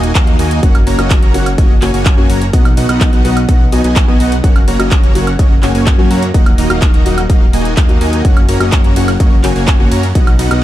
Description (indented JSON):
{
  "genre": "EDM, festival progressive house",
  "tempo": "126 BPM",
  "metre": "4/4",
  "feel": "straight",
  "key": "F# major",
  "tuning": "A4 = 440 Hz",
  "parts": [
    { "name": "dense compressed supersaw", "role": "riff", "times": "0.0-10.6 s", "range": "A#3 to A#5", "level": "-17 LUFS", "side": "equal", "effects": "sidechain pumping, tape echo" },
    { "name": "fat analog bass", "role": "bass", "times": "0.0-10.6 s", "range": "D#1 to F#2", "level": "-16 LUFS", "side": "equal", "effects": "sidechain pumping" },
    { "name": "big-room dance drum kit", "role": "drums", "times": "0.0-10.6 s", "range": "handclaps, hi-hat, ride cymbal, woodblock", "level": "-21 LUFS", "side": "right 2 dB", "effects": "none" },
    { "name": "electronic kick drum", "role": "drums", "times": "0.2-10.2 s", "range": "none", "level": "-10 LUFS", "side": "equal", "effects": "none" },
    { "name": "dark concert grand piano", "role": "accompaniment", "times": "0.6-10.6 s", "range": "B2 to F#4", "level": "-19 LUFS", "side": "left 1 dB", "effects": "sidechain pumping, tape echo" }
  ],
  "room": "light reverb, digital ambience",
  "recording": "dark, warm production",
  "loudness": "-8 LUFS",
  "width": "side -14 dB against mid",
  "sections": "0.0-10.6 A section",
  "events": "none",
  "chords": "0.0 D#m; 0.6 F#; 2.5 B; 4.4 F#; 6.3 D#m; 8.2 F#",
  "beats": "0.15 | 0.63 1.11 1.58 2.06 | 2.53 3.01 3.49 3.96 | 4.44 4.92 5.39 5.87 | 6.34 6.82 7.30 7.77 | 8.25 8.72 9.20 9.68 | 10.15 10.63"
}